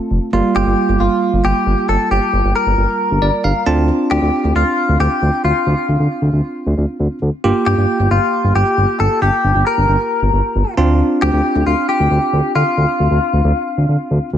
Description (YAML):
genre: synth-pop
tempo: 135 BPM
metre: 4/4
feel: straight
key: G minor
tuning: A4 = 440 Hz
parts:
  - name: bell-like tine electric piano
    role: accompaniment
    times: 0.0-14.3 s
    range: G3 to A5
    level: -19 LUFS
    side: right 3 dB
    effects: none
  - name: smooth synth bass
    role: bass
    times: 0.1-14.4 s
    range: F1 to D2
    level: -15 LUFS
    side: equal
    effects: none
  - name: direct-recorded clean electric guitar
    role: melody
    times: 0.6-14.3 s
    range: F4 to Bb4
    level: -17 LUFS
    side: left 2 dB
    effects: wide subtle chorus, digital delay
room: light reverb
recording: none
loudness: -13 LUFS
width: side -10 dB against mid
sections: 0.3-14.4 A section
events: tine electric piano fill 3.0-3.9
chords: 0.3 Gm7; 3.7 Dm7; 7.4 Gm7; 10.8 Dm7